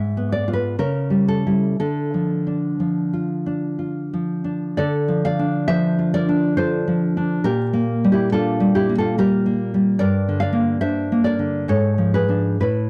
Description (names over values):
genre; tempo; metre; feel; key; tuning
romantic piece for solo classical guitar; 58-73 BPM; 3/4; rubato; D minor; A4 = 438 Hz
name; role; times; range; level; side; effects
nylon-string guitar; solo; 0.0-12.9 s; G2 to F5; -20 LUFS; equal; none
room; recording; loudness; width
light reverb; dry, close 1970s-style studio recording; -20 LUFS; mono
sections
0.0-4.8 A section; 4.8-12.9 B section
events
none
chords
0.0 G#dim7; 0.8 A7/C#; 1.8 Dm; 7.4 Gm/Bb; 10.0 Gm; 11.7 G#dim7